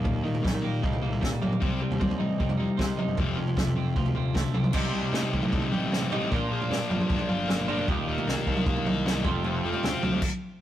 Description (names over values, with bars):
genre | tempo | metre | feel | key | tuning
indie rock | 154 BPM | 4/4 | straight | Eb lydian | A4 = 439 Hz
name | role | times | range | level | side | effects
sludgy distorted guitar | riff | 0.0-10.2 s | Eb2 to G4 | -28 LUFS | left 3 dB | overdrive
twelve-string electric guitar | riff | 0.0-10.2 s | Eb2 to G4 | -33 LUFS | right 5 dB | none
fuzz picked electric bass | bass | 0.0-10.2 s | Eb1 to Eb3 | -33 LUFS | equal | overdrive
compact cocktail drum kit | drums | 0.0-10.3 s | crash cymbal, kick drum, snare drum, toms | -28 LUFS | equal | none
room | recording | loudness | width
light reverb | rough rehearsal-room recording, warm saturation | -24 LUFS | side -12 dB against mid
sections
0.0-4.7 A section; 4.7-10.6 B section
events
stop 10.2-10.6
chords
0.0 Eb; 1.6 Cm; 3.2 F; 4.7 Cm; 6.3 Bb; 7.9 Eb; 9.2 F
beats
| 0.05 0.45 0.84 1.23 | 1.62 2.01 2.40 2.79 | 3.18 3.57 3.96 4.36 | 4.75 5.14 5.53 5.92 | 6.31 6.70 7.09 7.48 | 7.87 8.26 8.65 9.04 | 9.43 9.82 10.21